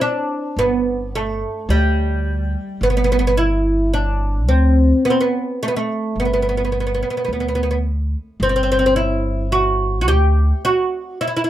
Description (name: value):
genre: Arabic maqam ensemble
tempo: 107 BPM (eighths)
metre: 10/8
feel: straight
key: G maqam ajam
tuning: A4 = 440 Hz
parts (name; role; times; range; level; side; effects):
- oud; melody; 0.0-11.5 s; G3 to G4; -18 LUFS; right 1 dB; none
- upright bass; bass; 0.6-10.5 s; G1 to D2; -19 LUFS; equal; none
room: light reverb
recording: dark, warm production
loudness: -16 LUFS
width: side -12 dB against mid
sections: 0.0-11.5 A section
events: none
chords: none